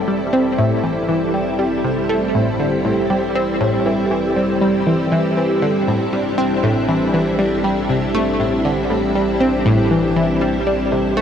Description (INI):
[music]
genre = ambient, sequencer-driven space music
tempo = 119 BPM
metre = 4/4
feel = straight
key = A minor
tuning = A4 = 440 Hz
[part]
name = string machine, full ensemble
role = sustained chords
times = 0.0-11.2 s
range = G3 to A4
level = -19 LUFS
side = equal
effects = ensemble chorus, cassette tape
[part]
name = round analog bass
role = bass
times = 0.0-11.2 s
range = A1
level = -33 LUFS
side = equal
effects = none
[part]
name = pulsing gated texture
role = texture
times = 0.0-11.2 s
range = C4 to C5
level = -25 LUFS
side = left 2 dB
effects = chorus, built-in reverb, cassette tape
[part]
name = analog pluck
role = riff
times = 0.1-11.2 s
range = A2 to C4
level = -18 LUFS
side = equal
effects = chorus, phaser, cassette tape, tape echo
[sound]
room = moderate spring reverb, RT60 2.7 s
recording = home recording on cassette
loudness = -15 LUFS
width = side -8 dB against mid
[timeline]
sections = 0.0-11.2 A section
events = fade-in on analog synth bass 0.0-11.2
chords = 0.0 Am7